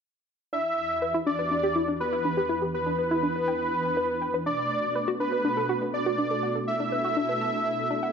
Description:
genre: house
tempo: 122 BPM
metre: 4/4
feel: straight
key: E minor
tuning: A4 = 440 Hz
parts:
  - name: wide unison lead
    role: melody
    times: 0.5-8.1 s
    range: B4 to E5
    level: -27 LUFS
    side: equal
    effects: tape echo
  - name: filtered supersaw swell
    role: sustained chords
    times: 0.5-8.1 s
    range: E2 to B4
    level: -33 LUFS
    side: right 1 dB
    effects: low-pass filter
  - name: analog pluck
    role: arpeggios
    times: 0.5-8.1 s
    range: D4 to A5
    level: -30 LUFS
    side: left 1 dB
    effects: chorus, tape echo
room: moderate scoring stage reverb, RT60 1.7 s, digital ambience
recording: none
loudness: -24 LUFS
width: side -6 dB against mid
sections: 0.5-8.1 A section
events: filter sweep on synth arpeggio sound 0.5-8.1; filter sweep on supersaw synth 0.5-8.1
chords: 0.5 Em7; 4.5 Bm7

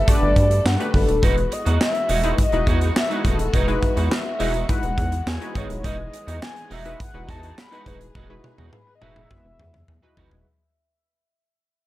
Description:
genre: early-eighties boogie funk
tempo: 104 BPM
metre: 4/4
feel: straight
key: E major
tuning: A4 = 440 Hz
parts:
  - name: mellow horn-like synth lead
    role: melody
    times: 0.0-10.2 s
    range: A4 to B5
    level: -26 LUFS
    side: left 2 dB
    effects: chorus
  - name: warm studio string section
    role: sustained chords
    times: 0.0-10.4 s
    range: D3 to A4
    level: -35 LUFS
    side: left 1 dB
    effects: none
  - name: rubbery square bass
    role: bass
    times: 0.0-10.4 s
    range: D#1 to G2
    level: -23 LUFS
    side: equal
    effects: none
  - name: funky polysynth comp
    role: accompaniment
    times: 0.1-10.5 s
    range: G3 to B4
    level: -28 LUFS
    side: left 2 dB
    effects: chorus
  - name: modern studio drum kit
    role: drums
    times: 0.1-10.4 s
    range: handclaps, hi-hat, kick drum, snare drum, toms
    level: -22 LUFS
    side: equal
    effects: gated reverb
  - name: electric guitar at the edge of break-up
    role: riff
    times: 1.2-10.4 s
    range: G#3 to F#4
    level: -30 LUFS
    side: right 6 dB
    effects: ensemble chorus
room: small room ambience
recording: none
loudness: -18 LUFS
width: side -16 dB against mid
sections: 0.0-10.5 A section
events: fade-out 0.0-10.5; drum fill 8.2-10.5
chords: 0.0 Gmaj9; 1.2 Emaj9

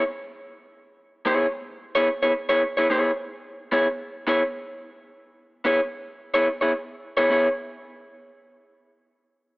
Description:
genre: funk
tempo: 109 BPM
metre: 4/4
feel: straight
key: C# minor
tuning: A4 = 437 Hz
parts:
  - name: electric guitar through a small old amp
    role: accompaniment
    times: 0.0-7.5 s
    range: B3 to C#5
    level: -21 LUFS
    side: equal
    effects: none
room: light reverb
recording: rough home demo mix, small speaker sound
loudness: -21 LUFS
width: side -26 dB against mid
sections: 0.0-7.3 A section; 7.3-9.5 B section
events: none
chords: 0.0 C#m7

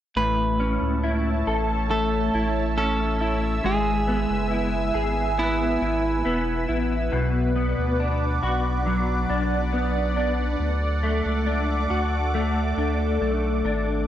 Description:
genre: dream pop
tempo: 69 BPM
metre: 4/4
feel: straight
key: A major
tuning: A4 = 440 Hz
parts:
  - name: electric guitar at the edge of break-up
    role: melody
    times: 0.2-6.7 s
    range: E4 to B4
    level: -27 LUFS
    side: right 2 dB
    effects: tape echo
  - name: phased analog pad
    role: sustained chords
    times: 0.8-14.0 s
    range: A4 to E6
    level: -29 LUFS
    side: right 1 dB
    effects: phaser, chorus
  - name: clean electric guitar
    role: arpeggios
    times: 0.2-14.1 s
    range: A2 to A4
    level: -25 LUFS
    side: left 2 dB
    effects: ensemble chorus, tape echo
  - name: saturated sub bass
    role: bass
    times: 0.2-14.1 s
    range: E1 to D2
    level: -26 LUFS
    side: equal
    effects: tube saturation
room: light reverb, digital ambience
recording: dry, gritty hardware recording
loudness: -21 LUFS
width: side -11 dB against mid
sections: 0.2-14.1 A section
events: none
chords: 0.2 A; 3.6 E; 7.1 Bm; 10.6 D

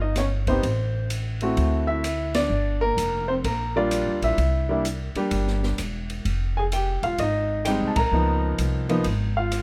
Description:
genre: jazz piano trio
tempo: 128 BPM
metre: 4/4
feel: swing 66% on 8ths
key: unclear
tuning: A4 = 438 Hz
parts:
  - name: warm baby grand piano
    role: melody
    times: 0.0-9.6 s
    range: F3 to Bb5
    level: -26 LUFS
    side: equal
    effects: plate reverb
  - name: upright bass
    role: bass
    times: 0.0-9.6 s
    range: E1 to D2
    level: -28 LUFS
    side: equal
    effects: none
  - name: open jazz drum kit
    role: drums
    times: 0.2-9.6 s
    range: hi-hat, kick drum, ride cymbal, rim click, snare drum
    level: -36 LUFS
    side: equal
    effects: none
room: light reverb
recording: none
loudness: -24 LUFS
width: mono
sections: 0.0-9.6 A section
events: band accent 2.3, 7.9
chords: 0.0 Cm; 0.6 Am; 1.6 D7; 2.5 Gm7; 4.4 C7; 6.3 Fm9; 8.1 Db13

